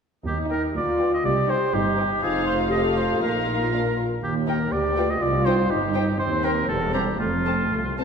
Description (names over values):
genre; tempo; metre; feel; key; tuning
quick classical-period movement for symphony orchestra; 121 BPM; 2/4; rubato; unclear; A4 = 443 Hz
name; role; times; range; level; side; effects
warm oboe; second line; 0.3-8.0 s; F4 to Eb5; -26 LUFS; right 1 dB; none
muted studio viola section; accompaniment; 0.3-8.0 s; G3 to G4; -26 LUFS; equal; none
muted studio cello section; bass; 0.3-8.0 s; C2 to Bb2; -29 LUFS; right 2 dB; none
muted studio double bass section; bass; 0.3-8.0 s; E1 to Eb2; -28 LUFS; right 1 dB; none
muted studio violin section; melody; 0.5-8.0 s; F5 to Bb5; -34 LUFS; left 2 dB; none
muted studio violin section; second line; 0.5-8.0 s; C4 to C5; -30 LUFS; left 4 dB; none
room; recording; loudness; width
wet recital hall reverb, RT60 1.7 s; none; -20 LUFS; side -6 dB against mid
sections
0.3-8.0 A section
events
none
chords
0.3 Eb; 0.8 G7/D; 1.2 Cm; 2.2 Fm7; 2.7 F7; 3.2 Bbsus4; 4.2 Eb; 4.7 G5/D; 5.2 Cm; 6.2 Cm/Eb; 6.7 C/E; 7.2 F